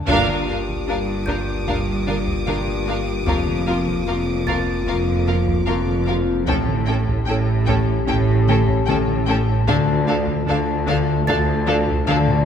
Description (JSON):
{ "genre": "cinematic, suspense film score", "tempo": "75 BPM", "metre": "4/4", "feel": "straight", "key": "G minor", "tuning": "A4 = 439 Hz", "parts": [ { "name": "Celtic harp", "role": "riff", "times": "0.0-12.4 s", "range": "F2 to D4", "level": "-25 LUFS", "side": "left 7 dB", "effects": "none" }, { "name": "pure sine sub bass", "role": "drone", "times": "0.0-12.4 s", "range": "F1 to D2", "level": "-30 LUFS", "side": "equal", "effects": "none" }, { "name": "rich chamber violin section", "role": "melody", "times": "0.1-12.1 s", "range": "F5 to G5", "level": "-29 LUFS", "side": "left 2 dB", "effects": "none" }, { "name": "rich chamber violin section", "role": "second line", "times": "0.1-12.2 s", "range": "A4 to Bb4", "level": "-29 LUFS", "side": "equal", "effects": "none" }, { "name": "rich chamber viola section", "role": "accompaniment", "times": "0.1-12.2 s", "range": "C#4 to F4", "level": "-29 LUFS", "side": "right 2 dB", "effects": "none" }, { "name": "mellow French horn section", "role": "sustained chords", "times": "0.1-12.4 s", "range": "A3 to G4", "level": "-26 LUFS", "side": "left 4 dB", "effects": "none" }, { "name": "clear chamber cello section", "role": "bass", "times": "0.1-12.4 s", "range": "D2 to A2", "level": "-26 LUFS", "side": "right 3 dB", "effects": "none" }, { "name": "rich chamber double bass section", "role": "bass", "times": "0.1-12.4 s", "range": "F1 to D2", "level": "-25 LUFS", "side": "right 4 dB", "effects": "none" }, { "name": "taiko ensemble", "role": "drums", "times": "0.1-12.4 s", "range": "none", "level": "-28 LUFS", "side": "right 1 dB", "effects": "none" }, { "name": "clear chamber violin section", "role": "texture", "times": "0.1-6.0 s", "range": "D6 to Eb6", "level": "-32 LUFS", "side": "right 1 dB", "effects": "none" }, { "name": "music box", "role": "texture", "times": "1.3-12.4 s", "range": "G6 to A6", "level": "-31 LUFS", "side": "right 5 dB", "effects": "none" } ], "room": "wet scoring stage reverb, RT60 1.7 s", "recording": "none", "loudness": "-17 LUFS", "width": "side -8 dB against mid", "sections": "0.1-12.4 A section", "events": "band accent 0.1-0.9; drum fill 12.1-12.4", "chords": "0.1 Gm7; 3.3 Fsus4; 6.5 A7; 9.7 Dm" }